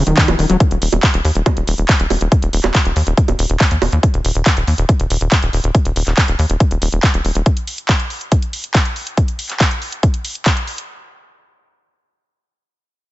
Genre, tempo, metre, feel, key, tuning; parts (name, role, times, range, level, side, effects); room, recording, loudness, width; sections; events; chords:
psychedelic trance; 140 BPM; 4/4; straight; A4 = 441 Hz
overdriven acid bass; riff; 0.0-0.6 s; Eb3 to Gb3; -17 LUFS; left 1 dB; distortion, auto-pan, sidechain pumping, tape echo
tight sequencer bass; bass; 0.0-7.4 s; Eb1 to Eb2; -16 LUFS; equal
big-room dance drum kit; drums; 0.1-10.9 s; bongos, handclaps, hi-hat; -20 LUFS; right 2 dB
electronic kick drum; drums; 0.2-10.5 s; -14 LUFS; equal
digital ambience; nothing above 7.9 kHz; -14 LUFS; side -17 dB against mid
0.0-10.9 A section